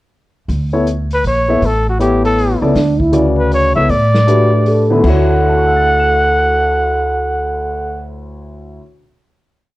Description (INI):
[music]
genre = jazz, small-group swing and bop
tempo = 158 BPM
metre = 3/4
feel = swing 65% on 8ths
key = D major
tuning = A4 = 438 Hz
[part]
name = upright bass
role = bass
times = 0.5-8.8 s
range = A1 to A2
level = -16 LUFS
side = equal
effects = none
[part]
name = open jazz drum kit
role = drums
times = 0.5-5.2 s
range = crash cymbal, hi-hat, kick drum, snare drum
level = -23 LUFS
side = equal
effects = none
[part]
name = warm baby grand piano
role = accompaniment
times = 0.7-9.1 s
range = D2 to E7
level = -18 LUFS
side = left 2 dB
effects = none
[part]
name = breathy trumpet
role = melody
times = 1.1-8.1 s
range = F#4 to F#5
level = -15 LUFS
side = equal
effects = none
[part]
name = breathy trombone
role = second line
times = 2.6-8.1 s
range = C#4 to A4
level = -17 LUFS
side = right 2 dB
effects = none
[sound]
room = light reverb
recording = worn, warbling old tape, cassette tape, warbly pitch drift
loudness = -11 LUFS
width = side -17 dB against mid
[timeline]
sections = 0.5-5.0 A section; 5.0-7.3 final chord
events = none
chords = 0.5 Dsus2; 1.6 A; 2.8 Dmaj7; 5.0 Dmaj9